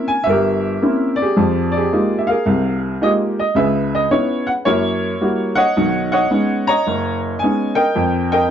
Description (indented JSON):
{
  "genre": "solo jazz",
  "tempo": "109 BPM",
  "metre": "4/4",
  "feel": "swing 68% on 8ths",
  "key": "unclear",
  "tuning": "A4 = 440 Hz",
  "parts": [
    { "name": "warm upright piano", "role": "solo", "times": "0.0-8.5 s", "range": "F#1 to Bb5", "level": "-15 LUFS", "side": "equal", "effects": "none" }
  ],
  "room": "moderate studio reverb, RT60 0.6 s",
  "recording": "nothing above 7.9 kHz",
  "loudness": "-15 LUFS",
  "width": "side -9 dB against mid",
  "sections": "0.0-8.5 A section",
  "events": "none",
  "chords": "0.0 C7b9; 1.4 Fm11; 3.6 Dbm9; 4.7 Gb7b9; 5.7 B69; 7.9 F9sus4"
}